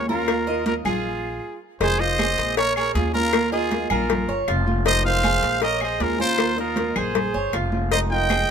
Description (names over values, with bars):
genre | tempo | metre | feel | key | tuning
latin, Cuban son and guajira | 157 BPM | 4/4 | straight | unclear | A4 = 440 Hz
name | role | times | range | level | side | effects
growling trumpet | melody | 0.0-8.5 s | Ab4 to G5 | -24 LUFS | equal | none
breathy bright jazz flute | second line | 0.0-8.5 s | F4 to Eb5 | -29 LUFS | right 4 dB | none
flamenco guitar | accompaniment | 0.0-8.5 s | C3 to Bb4 | -29 LUFS | equal | none
Cuban tres | arpeggios | 0.0-8.5 s | Eb4 to Eb5 | -28 LUFS | right 4 dB | none
upright bass | bass | 0.0-8.4 s | F1 to Eb2 | -27 LUFS | left 1 dB | none
congas | percussion | 0.1-8.5 s | none | -30 LUFS | right 1 dB | none
claves | percussion | 0.3-8.5 s | none | -31 LUFS | left 5 dB | none
cowbell | percussion | 0.3-8.5 s | none | -27 LUFS | left 11 dB | none
room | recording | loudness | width
light reverb | minimal, uncompressed stereo recording | -19 LUFS | side -7 dB against mid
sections
0.0-1.8 A section; 1.8-8.5 A section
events
stop 1.0-1.8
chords
0.3 Ebsus2; 1.0 Bb5; 1.8 Fm7; 2.6 Bbm7; 3.3 Ebsus2; 4.1 Bbm7; 4.9 Fm7; 5.6 Bbm7; 6.4 Ebsus2; 7.2 Bbm7; 7.9 Fm7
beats
| 0.28 0.66 1.04 1.43 | 1.81 2.19 2.57 2.95 | 3.33 3.71 4.09 4.48 | 4.86 5.24 5.62 6.01 | 6.39 6.77 7.15 7.54 | 7.92 8.30